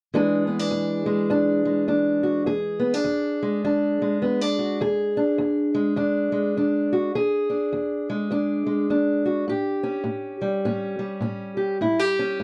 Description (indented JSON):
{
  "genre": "blues",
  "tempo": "103 BPM",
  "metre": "4/4",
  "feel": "swing 60% on 8ths",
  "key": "E mixolydian",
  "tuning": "A4 = 439 Hz",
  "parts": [
    { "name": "fingerpicked steel-string acoustic guitar", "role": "solo", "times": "0.1-12.4 s", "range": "E2 to G#4", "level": "-24 LUFS", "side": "equal", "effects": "none" }
  ],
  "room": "light reverb",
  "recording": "dry, close 1970s-style studio recording",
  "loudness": "-24 LUFS",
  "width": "mono",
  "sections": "0.1-12.4 A section",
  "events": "none",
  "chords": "0.1 E7; 9.5 A7"
}